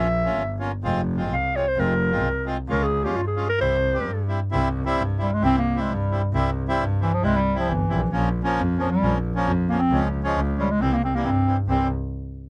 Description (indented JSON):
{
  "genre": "klezmer",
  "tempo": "133 BPM",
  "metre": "2/4",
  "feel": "straight",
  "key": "C phrygian dominant",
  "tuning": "A4 = 444 Hz",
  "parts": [
    { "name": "mellow clarinet", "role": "melody", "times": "0.0-11.9 s", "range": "E3 to F5", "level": "-25 LUFS", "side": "equal", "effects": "none" },
    { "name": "accordion", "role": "accompaniment", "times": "0.0-11.9 s", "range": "E3 to G4", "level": "-29 LUFS", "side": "equal", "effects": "none" },
    { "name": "bright double bass", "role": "bass", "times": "0.0-11.9 s", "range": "F1 to G2", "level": "-26 LUFS", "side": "equal", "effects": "none" }
  ],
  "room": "little or no reverb",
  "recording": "dry, close 1970s-style studio recording",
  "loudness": "-23 LUFS",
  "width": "mono",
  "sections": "0.0-4.5 A section; 4.5-11.7 B section",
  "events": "speeding up 0.0-12.5",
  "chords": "0.0 Bbm; 0.8 Fm; 2.7 Db; 3.6 C; 8.1 Bbm; 9.9 Db; 10.8 C",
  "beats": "0.38 | 0.84 1.30 | 1.76 2.22 | 2.68 3.14 | 3.60 4.06 | 4.51 4.97 | 5.42 5.88 | 6.33 6.78 | 7.23 7.67 | 8.12 8.57 | 9.02 9.46 | 9.91 10.35 | 10.79 11.23 | 11.68"
}